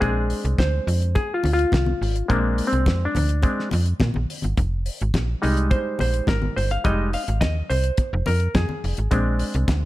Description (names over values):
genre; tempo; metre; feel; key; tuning
disco; 106 BPM; 4/4; straight; F dorian; A4 = 440 Hz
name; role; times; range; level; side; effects
mellow clav; accompaniment; 0.0-9.9 s; G3 to F5; -24 LUFS; left 1 dB; none
slap-like FM bass; bass; 0.0-9.9 s; F1 to Bb2; -22 LUFS; equal; none
damped 70s drum kit; drums; 0.0-9.8 s; hi-hat, kick drum, snare drum; -25 LUFS; equal; none
congas; percussion; 0.0-9.8 s; none; -30 LUFS; left 2 dB; none
room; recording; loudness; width
light reverb; dark, warm production; -20 LUFS; side -16 dB against mid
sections
0.0-9.9 A section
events
clav solo 0.0-9.9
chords
0.0 Bb9; 4.6 Fm7; 9.1 Bb9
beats
| 0.02 0.59 1.16 1.73 | 2.30 2.87 3.44 4.00 | 4.57 5.14 5.71 6.28 | 6.85 7.41 7.98 8.55 | 9.12 9.69